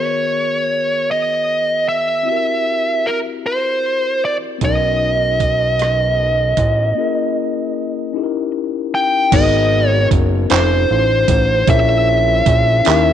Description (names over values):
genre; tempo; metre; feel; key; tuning
slow six-eight R&B; 51 BPM (dotted quarters); 6/8; straight; G# minor; A4 = 441 Hz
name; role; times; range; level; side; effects
fuzz lead guitar; melody; 0.0-13.1 s; Bb4 to G5; -16 LUFS; right 2 dB; distortion
mellow tine electric piano; accompaniment; 0.0-13.1 s; D#3 to C#5; -22 LUFS; left 12 dB; medium stereo tremolo
fat analog bass; bass; 4.6-13.1 s; F1 to D#2; -17 LUFS; equal; none
dusty soul sampler-style drum kit; drums; 4.6-13.0 s; crash cymbal, handclaps, hi-hat, kick drum, rim click; -18 LUFS; right 4 dB; none
room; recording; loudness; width
light reverb, digital ambience; 1960s-style stereo; -14 LUFS; side -9 dB against mid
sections
0.0-9.3 A section; 9.3-13.1 B section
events
break 7.0-9.3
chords
0.0 G#m9; 2.3 C7#11; 4.6 Bmaj9; 7.0 A#m7b5; 8.1 D#7b9; 9.3 G#m9; 10.5 F7b13; 11.7 A#m7b5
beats
1.09 | 2.26 3.44 | 4.62 5.79 | 6.97 8.15 | 9.32 10.50 | 11.68 12.85